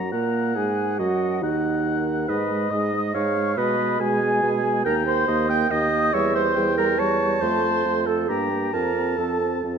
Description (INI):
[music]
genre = quick classical-period movement for wind quintet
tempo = 140 BPM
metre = 3/4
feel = rubato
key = unclear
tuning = A4 = 440 Hz
[part]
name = concert flute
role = melody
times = 0.0-9.6 s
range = Eb5 to G6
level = -29 LUFS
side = left 7 dB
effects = none
[part]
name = warm oboe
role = second line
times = 0.0-9.8 s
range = Eb5 to Bb5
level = -28 LUFS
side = left 4 dB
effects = none
[part]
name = dark bassoon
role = bass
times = 0.0-9.8 s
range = Eb2 to Cb3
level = -26 LUFS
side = right 2 dB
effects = none
[part]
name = warm French horn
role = accompaniment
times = 0.1-9.8 s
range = Eb3 to C4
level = -29 LUFS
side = equal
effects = none
[part]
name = warm clarinet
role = accompaniment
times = 0.1-9.6 s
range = Eb4 to G5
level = -24 LUFS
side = right 7 dB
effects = none
[sound]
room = moderate scoring stage reverb, RT60 1.9 s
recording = dark, warm production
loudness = -20 LUFS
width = side -7 dB against mid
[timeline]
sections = 0.0-9.8 A section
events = none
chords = 0.0 Gbadd9; 1.0 Ebm; 2.3 Abm; 3.6 Abm/Cb; 4.9 Cm7/Eb; 6.1 C13b9/E; 7.4 F; 8.3 Gm; 8.7 F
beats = 0.13 0.57 | 1.00 1.43 1.86 | 2.29 2.72 3.15 | 3.58 4.01 4.43 | 4.86 5.28 5.71 | 6.14 6.57 7.00 | 7.42 7.86 8.29 | 8.74 9.19 9.64